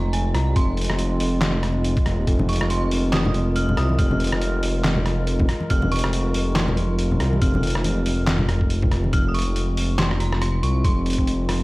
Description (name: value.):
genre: deep dubstep.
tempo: 140 BPM.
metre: 4/4.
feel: swing 58% on 16ths, half-time.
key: F minor.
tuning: A4 = 440 Hz.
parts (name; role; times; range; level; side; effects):
dark detuned synth bell; melody; 0.0-11.6 s; Ab5 to F6; -31 LUFS; right 1 dB; chorus, tremolo, dub echo.
dark analog pad; sustained chords; 0.0-11.6 s; Ab3 to Bb4; -29 LUFS; equal; chorus.
dark detuned saw bass; bass; 0.0-11.6 s; Eb1 to C2; -21 LUFS; equal; none.
trip hop sampler-style drum kit; drums; 0.1-11.6 s; handclaps, hi-hat, rim click, snare drum; -27 LUFS; equal; studio reverb.
electronic kick drum; drums; 0.6-11.3 s; none; -20 LUFS; equal; studio reverb.
congas; percussion; 2.4-9.1 s; none; -27 LUFS; left 1 dB; none.
room: little or no reverb.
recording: dry, gritty hardware recording, transformer saturation, vinyl crackle.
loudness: -19 LUFS.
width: side -21 dB against mid.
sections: 0.0-9.1 A section; 9.1-11.6 A section.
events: drop 0.0-9.1, 9.1-11.6.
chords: 0.0 Fm.